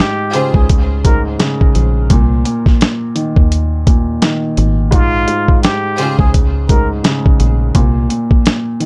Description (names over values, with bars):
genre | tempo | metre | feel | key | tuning
hip hop, boom-bap hip-hop | 85 BPM | 4/4 | swing 59% on 16ths | Bb dorian | A4 = 439 Hz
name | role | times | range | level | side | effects
trumpet with plunger mute | melody | 0.0-6.9 s | F4 to Bb4 | -22 LUFS | equal | tape echo
dark upright piano | accompaniment | 0.0-8.9 s | Ab2 to Eb3 | -20 LUFS | equal | none
boom bap sampler-style drum kit | drums | 0.0-8.9 s | hi-hat, kick drum, snare drum | -14 LUFS | equal | none
bright symphonic string section | stabs | 0.3-0.6, 6.0-6.3 s | F4 to C5 | -26 LUFS | equal | tape echo
deep dub fingered electric bass | bass | 0.5-8.1 s | Ab1 to Eb2 | -17 LUFS | equal | none
room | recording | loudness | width
little or no reverb | dark, warm production | -13 LUFS | mono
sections
0.0-8.9 A section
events
none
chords
0.0 Bbm7; 2.1 Cm7 (rootless); 4.9 Bbm7; 7.7 C7(no3)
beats
0.69 1.40 | 2.10 2.81 3.51 4.22 | 4.92 5.63 6.34 7.04 | 7.75 8.46